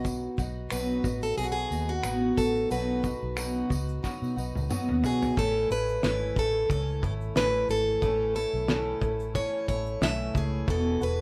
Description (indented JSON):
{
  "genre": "acoustic pop",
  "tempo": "90 BPM",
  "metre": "4/4",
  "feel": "swing 55% on 16ths",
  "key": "unclear",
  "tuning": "A4 = 441 Hz",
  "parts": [
    { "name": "picked plugged-in acoustic archtop guitar", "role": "melody", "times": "0.0-11.2 s", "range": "F#4 to E5", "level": "-31 LUFS", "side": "equal", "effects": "none" },
    { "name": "picked twelve-string acoustic guitar", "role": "accompaniment", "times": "0.0-11.2 s", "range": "E2 to F#4", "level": "-34 LUFS", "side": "equal", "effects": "none" },
    { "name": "vintage muted fingered electric bass", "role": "bass", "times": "0.0-11.2 s", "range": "E1 to B2", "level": "-34 LUFS", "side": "equal", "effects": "none" },
    { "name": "cloth-damped thuddy drum kit", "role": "drums", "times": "0.0-11.2 s", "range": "finger snaps, kick drum, shaker, snare drum, toms", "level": "-33 LUFS", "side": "equal", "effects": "none" },
    { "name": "tambourine", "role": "percussion", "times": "0.1-5.4 s", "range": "none", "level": "-48 LUFS", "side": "equal", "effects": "none" }
  ],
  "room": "light reverb",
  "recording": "lossy compression artefacts",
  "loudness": "-28 LUFS",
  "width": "mono",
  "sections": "0.0-5.4 A section; 5.4-11.2 B section",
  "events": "drum fill 4.0-5.4",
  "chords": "0.0 B; 5.4 A; 10.7 Eadd9"
}